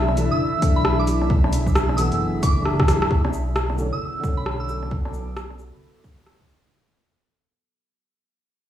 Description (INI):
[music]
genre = future garage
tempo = 133 BPM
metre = 4/4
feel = swing 62% on 16ths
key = B dorian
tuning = A4 = 441 Hz
[part]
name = felt-muted upright piano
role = accompaniment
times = 0.0-5.2 s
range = D3 to D4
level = -28 LUFS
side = equal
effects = sidechain pumping, analog delay
[part]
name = deep dark ambient pad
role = sustained chords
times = 0.0-6.7 s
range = B3 to D6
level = -29 LUFS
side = left 2 dB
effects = chorus, built-in reverb, vintage 12-bit sampler grit, sidechain pumping
[part]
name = dark detuned saw bass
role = bass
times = 0.0-5.8 s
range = F#1 to B1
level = -24 LUFS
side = equal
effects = sidechain pumping
[part]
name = drifting glass-harmonics texture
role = texture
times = 0.0-3.1 s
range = E4 to E5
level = -36 LUFS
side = left 2 dB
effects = chorus, built-in reverb
[part]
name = deep house drum kit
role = drums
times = 0.1-6.6 s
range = hi-hat, rim click, shaker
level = -25 LUFS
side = equal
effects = overdrive
[part]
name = soft synth bell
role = melody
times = 0.3-4.8 s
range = B5 to E6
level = -29 LUFS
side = right 2 dB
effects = chorus, analog delay
[part]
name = electronic kick drum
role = drums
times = 0.6-6.5 s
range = none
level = -20 LUFS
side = equal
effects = overdrive
[sound]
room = light reverb, digital ambience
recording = played on a big sound system in a bare room, large studio reverb, small room ambience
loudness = -19 LUFS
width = side -11 dB against mid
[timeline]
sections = 0.0-3.1 A section; 3.1-6.7 B section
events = drum fill 2.7-3.1; fade-out 3.1-6.7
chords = 0.0 Dsus2; 3.1 Bm7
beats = 0.40 0.85 | 1.30 1.75 2.20 2.65 | 3.10 3.56 4.01 4.46 | 4.91 5.36 5.81 6.26